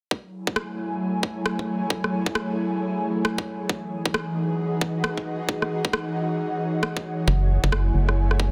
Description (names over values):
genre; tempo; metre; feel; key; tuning
UK garage, two-step garage; 134 BPM; 4/4; swing 61% on 16ths; F# dorian; A4 = 441 Hz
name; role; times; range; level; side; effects
ethereal airy pad; sustained chords; 0.7-8.5 s; E3 to E5; -36 LUFS; equal; ensemble chorus, built-in reverb, tremolo, sidechain pumping
electronic kick drum; drums; 0.1-8.5 s; none; -28 LUFS; equal; high-pass filter on kick, small room reverb, high-pass filter on room
airy breathy pad; texture; 0.3-8.5 s; E3 to G#5; -30 LUFS; equal; chorus, sidechain pumping
electronic rim click; drums; 0.6-8.4 s; none; -29 LUFS; equal; soft clipping on snare, small room reverb
organ-like FM bass; bass; 7.3-8.5 s; F#1; -22 LUFS; equal; none
room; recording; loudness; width
light reverb; dense, heavily limited modern master; -25 LUFS; mono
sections
0.1-8.5 A section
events
none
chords
0.1 F#m9; 3.7 Emaj9; 7.3 F#m9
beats
| 0.11 0.56 1.01 1.46 | 1.90 2.35 2.80 3.25 | 3.69 4.14 4.59 5.04 | 5.49 5.93 6.38 6.83 | 7.28 7.72 8.17